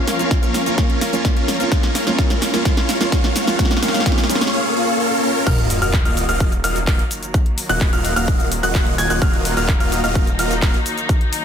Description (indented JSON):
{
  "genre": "EDM, festival progressive house",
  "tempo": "128 BPM",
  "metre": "4/4",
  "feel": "straight",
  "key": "Eb minor",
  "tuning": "A4 = 438 Hz",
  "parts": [
    { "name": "muted studio string section", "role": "sustained chords", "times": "0.0-11.4 s", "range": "Eb3 to F5", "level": "-28 LUFS", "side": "left 2 dB", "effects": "sidechain pumping" },
    { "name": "big supersaw lead", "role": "riff", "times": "0.0-10.8 s", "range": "Bb3 to Ab5", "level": "-21 LUFS", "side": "equal", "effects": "phaser, sidechain pumping, low-pass filter, tape echo" },
    { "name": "riser and sub drop", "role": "sound effects", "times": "0.1-7.3 s", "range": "none", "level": "-27 LUFS", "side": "equal", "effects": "none" },
    { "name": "big-room dance drum kit", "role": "drums", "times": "0.1-11.4 s", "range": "crash cymbal, handclaps, hi-hat, shaker, snare drum", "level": "-23 LUFS", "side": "equal", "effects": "small room ambience" },
    { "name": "felt-muted upright piano", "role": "accompaniment", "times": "0.2-4.4 s", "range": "F3 to F4", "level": "-24 LUFS", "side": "right 3 dB", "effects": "sidechain pumping, tape echo" },
    { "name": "electronic kick drum", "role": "drums", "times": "0.3-11.2 s", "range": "none", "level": "-17 LUFS", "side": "equal", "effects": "small room ambience" },
    { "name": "dark grand piano", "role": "arpeggios", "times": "5.5-10.8 s", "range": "F6 to Ab6", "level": "-24 LUFS", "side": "equal", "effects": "sidechain pumping, tape echo" },
    { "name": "wide detuned saw bass", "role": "bass", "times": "5.5-10.8 s", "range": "Eb1", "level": "-24 LUFS", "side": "equal", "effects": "chorus, sidechain pumping" }
  ],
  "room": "light reverb, digital ambience",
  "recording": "dense, heavily limited modern master",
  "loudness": "-15 LUFS",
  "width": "side -8 dB against mid",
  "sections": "0.0-5.5 A section; 5.5-11.4 B section",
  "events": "build-up 0.0-5.5; drum fill 0.0-4.5; riser 0.1-5.5; drop 5.5-11.4; impact 5.5-7.3",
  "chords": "0.0 Bbm; 1.7 Bbm7/F; 5.5 Ebmadd9"
}